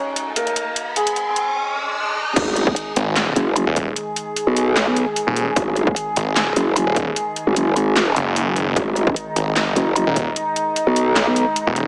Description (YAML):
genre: heavy wobble dubstep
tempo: 150 BPM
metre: 4/4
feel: half-time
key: G# minor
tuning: A4 = 443 Hz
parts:
  - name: felt-muted upright piano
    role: melody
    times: 0.0-2.3 s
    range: G#3 to C#5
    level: -26 LUFS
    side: equal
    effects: dub echo
  - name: dark chamber string section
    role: sustained chords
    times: 0.0-11.9 s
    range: D#3 to G#4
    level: -27 LUFS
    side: equal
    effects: sidechain pumping, low-pass filter
  - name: riser, swell and sub drop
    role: sound effects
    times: 0.0-4.0 s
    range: none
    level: -27 LUFS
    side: equal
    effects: none
  - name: dubstep drum kit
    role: drums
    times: 0.2-11.8 s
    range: crash cymbal, handclaps, hi-hat, snare drum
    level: -25 LUFS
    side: equal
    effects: high-pass filter on hats, high-pass filter on cymbals, high-pass filter on snare
  - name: growl bass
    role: bass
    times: 2.4-11.5 s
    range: F#1 to B1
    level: -20 LUFS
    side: equal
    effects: chorus, overdrive
  - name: electronic kick drum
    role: drums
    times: 2.4-10.2 s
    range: none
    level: -25 LUFS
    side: equal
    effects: distortion
  - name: snarling distorted saw bass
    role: bass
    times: 3.0-11.9 s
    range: D#1 to G#1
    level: -23 LUFS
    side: equal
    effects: distortion, overdrive
room: light reverb, digital ambience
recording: high-pass filter, small speaker sound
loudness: -20 LUFS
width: mono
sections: 0.0-2.4 A section; 2.4-11.9 B section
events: build-up 0.0-2.4; riser 0.0-2.4; swell 1.6-2.4; drop 2.4-11.9; impact 2.4-4.0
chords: 0.0 G#5